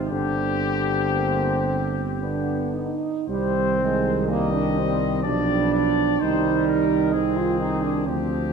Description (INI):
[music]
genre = classical, hymn-like piece for brass band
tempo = 54-66 BPM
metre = 3/4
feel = rubato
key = C minor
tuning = A4 = 439 Hz
[part]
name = mellow French horn section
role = second line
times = 0.0-8.4 s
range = G3 to F4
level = -24 LUFS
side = right 7 dB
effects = none
[part]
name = clear trombone section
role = accompaniment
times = 0.0-8.5 s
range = G3 to C4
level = -29 LUFS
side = left 2 dB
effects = none
[part]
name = warm euphonium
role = accompaniment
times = 0.0-8.5 s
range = C3 to F3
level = -30 LUFS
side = right 2 dB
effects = none
[part]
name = dark tuba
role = bass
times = 0.0-8.5 s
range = G1 to D2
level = -27 LUFS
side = equal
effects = none
[part]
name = bright trumpet section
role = melody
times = 0.1-8.5 s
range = G4 to Eb5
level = -28 LUFS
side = left 9 dB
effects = none
[sound]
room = moderate concert hall reverb, RT60 2.0 s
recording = dark, warm production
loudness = -20 LUFS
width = side -6 dB against mid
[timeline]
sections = 0.0-3.3 A section; 3.3-8.5 B section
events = none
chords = 0.1 Gsus4; 2.2 G; 3.3 Cm; 5.2 G7/B; 6.2 Cm